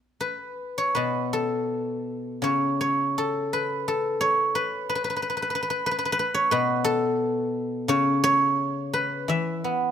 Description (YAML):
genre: chinese traditional, Chinese solo plucked strings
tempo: 74-93 BPM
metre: 4/4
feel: rubato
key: unclear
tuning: A4 = 440 Hz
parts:
  - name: guzheng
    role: solo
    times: 0.0-9.9 s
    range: B2 to E5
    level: -23 LUFS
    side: equal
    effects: none
room: light reverb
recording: close, detailed microphones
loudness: -23 LUFS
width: side -8 dB against mid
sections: 1.0-9.9 A section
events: none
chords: none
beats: 0.22 | 0.98 1.71 2.44 3.16 | 3.86 4.54 5.20 5.86 | 6.53 7.22 7.90 8.59 | 9.29